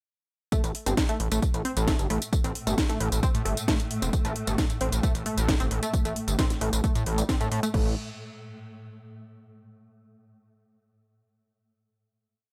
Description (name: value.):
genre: driving peak-time techno.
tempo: 133 BPM.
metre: 4/4.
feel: straight.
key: A minor.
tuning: A4 = 438 Hz.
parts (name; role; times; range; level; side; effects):
tight sequenced synth; riff; 0.5-8.0 s; G3 to C4; -35 LUFS; equal; chorus, sidechain pumping, digital delay.
swarming drone; drone; 1.7-7.8 s; A2 to A3; -39 LUFS; equal; built-in reverb, sidechain pumping.
electronic kick drum; drums; 0.5-7.8 s; none; -29 LUFS; equal; none.
techno drum kit; drums; 0.5-7.8 s; crash cymbal, hi-hat, snare drum, tambourine; -34 LUFS; equal; overdrive, sidechain pumping on hats, sidechain pumping on perc, sidechain pumping on cymbals.
gritty driven synth bass; bass; 0.6-8.0 s; E1 to A2; -30 LUFS; equal; sidechain pumping.
room: little or no reverb.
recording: none.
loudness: -26 LUFS.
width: mono.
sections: 0.5-7.7 drop; 7.7-9.5 final note.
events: drop 0.5-7.7.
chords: 0.5 A5; 7.7 N.C..